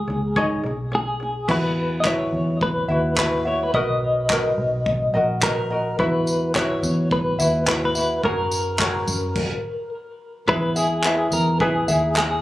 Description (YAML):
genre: acoustic pop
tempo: 107 BPM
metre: 4/4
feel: swing 60% on 16ths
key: unclear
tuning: A4 = 441 Hz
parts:
  - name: clean electric guitar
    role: melody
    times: 0.0-12.4 s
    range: G#4 to D#5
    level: -24 LUFS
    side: left 1 dB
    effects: tremolo, ping-pong delay
  - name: vintage muted fingered electric bass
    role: bass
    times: 0.0-12.4 s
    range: A#1 to F#2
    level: -25 LUFS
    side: equal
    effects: none
  - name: ukulele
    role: accompaniment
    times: 0.1-12.4 s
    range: D#4 to E5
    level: -24 LUFS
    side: equal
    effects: none
  - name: unplugged drum kit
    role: drums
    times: 0.4-12.3 s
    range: crash cymbal, handclaps, kick drum, tambourine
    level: -26 LUFS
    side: equal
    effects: none
room: little or no reverb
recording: recorded on a phone in the room, club reverb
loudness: -19 LUFS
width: side -16 dB against mid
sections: 0.0-1.5 A section; 1.5-10.5 B section; 10.5-12.4 C section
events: stop 9.4-10.5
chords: 0.0 C#sus2; 1.5 Esus2; 3.7 Bmaj7; 6.0 Esus2; 8.2 F#add9; 10.5 E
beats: 0.36 0.93 | 1.49 2.05 2.61 3.18 | 3.74 4.30 4.86 5.43 | 5.99 6.55 7.11 7.67 | 8.24 8.80 9.36 9.92 | 10.48 11.04 11.61 12.17